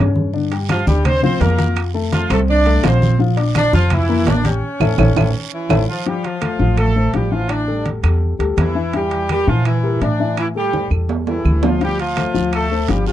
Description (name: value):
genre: latin, salsa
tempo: 167 BPM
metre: 4/4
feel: straight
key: unclear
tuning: A4 = 445 Hz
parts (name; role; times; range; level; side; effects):
- dark grand piano; accompaniment; 0.0-13.1 s; C#3 to G6; -22 LUFS; left 7 dB; none
- upright bass; bass; 0.0-13.1 s; G1 to Bb2; -18 LUFS; right 1 dB; none
- congas; percussion; 0.2-13.1 s; none; -22 LUFS; equal; none
- guiro; percussion; 0.3-5.8, 11.8-13.1 s; none; -35 LUFS; right 17 dB; none
- timbales; percussion; 0.5-13.1 s; none; -25 LUFS; right 9 dB; none
- clear horn section; melody; 0.7-13.1 s; E3 to D5; -20 LUFS; right 1 dB; none
- claves; percussion; 0.7-12.7 s; none; -30 LUFS; right 18 dB; none
room: light reverb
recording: dry, close 1970s-style studio recording, lossy compression artefacts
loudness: -14 LUFS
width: side -12 dB against mid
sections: 0.0-6.1 A section; 6.1-13.1 B section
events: band accent 4.6-6.1; drum fill 10.7-11.8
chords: 0.3 Gm7; 1.8 F; 3.2 Bb; 4.6 A; 6.1 Fmaj9; 7.5 A7sus4; 8.9 Em7b5; 10.4 A5; 11.8 Dm7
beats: | 0.33 0.69 1.05 1.41 | 1.76 2.12 2.48 2.84 | 3.20 3.56 3.91 4.27 | 4.63 4.99 5.35 5.71 | 6.06 6.42 6.78 7.14 | 7.50 7.86 8.22 8.58 | 8.94 9.30 9.66 10.02 | 10.37 10.73 11.09 11.45 | 11.81 12.17 12.53 12.89